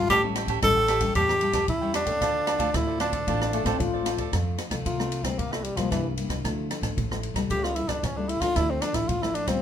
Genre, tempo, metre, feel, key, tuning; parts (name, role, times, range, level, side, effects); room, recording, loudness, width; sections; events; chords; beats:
samba and choro; 113 BPM; 4/4; straight; D minor, F major from 4.3 s; A4 = 442 Hz
warm tenor saxophone; melody; 0.0-9.6 s; E3 to A4; -25 LUFS; equal
cavaquinho; accompaniment; 0.0-4.3 s; F4 to G5; -31 LUFS; right 8 dB
nylon-string guitar; accompaniment; 0.0-9.6 s; G2 to F4; -32 LUFS; left 4 dB
upright bass; bass; 0.0-9.6 s; G#1 to F2; -31 LUFS; right 1 dB
open jazz drum kit; drums; 0.1-9.6 s; kick drum, ride cymbal, rim click; -30 LUFS; equal
warm trombone; second line; 3.5-4.3 s; A3 to F4; -29 LUFS; left 9 dB
moderate studio ambience, RT60 0.5 s; minimal, uncompressed stereo recording; -23 LUFS; side -9 dB against mid
0.0-4.3 A section; 4.3-9.6 B section
tenor saxophone solo 4.3-9.6
0.1 A7; 2.2 Dm7; 4.3 F; 5.4 C7; 6.5 Dmadd9; 7.5 A7/C#; 8.6 Dm
| 0.10 0.63 1.16 1.69 | 2.22 2.75 3.27 3.80 | 4.33 4.86 5.39 5.92 | 6.45 6.98 7.51 8.04 | 8.57 9.10